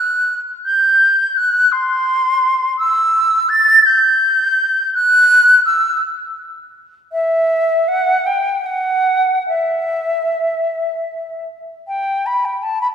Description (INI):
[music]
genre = classical, baroque-style fantasia for unaccompanied flute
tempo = 48-57 BPM (dotted quarters)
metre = 6/8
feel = rubato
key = E minor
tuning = A4 = 439 Hz
[part]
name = concert flute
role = solo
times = 0.0-12.9 s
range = E5 to A6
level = -12 LUFS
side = equal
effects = none
[sound]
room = wet concert hall reverb, RT60 2.4 s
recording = heard from further back in the room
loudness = -12 LUFS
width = side -8 dB against mid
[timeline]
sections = 0.0-11.9 A section; 11.9-12.9 A section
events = none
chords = none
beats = | 0.65 1.72 | 2.78 3.86 | 4.94 6.01 | 7.12 8.27 | 9.48 10.68 | 11.88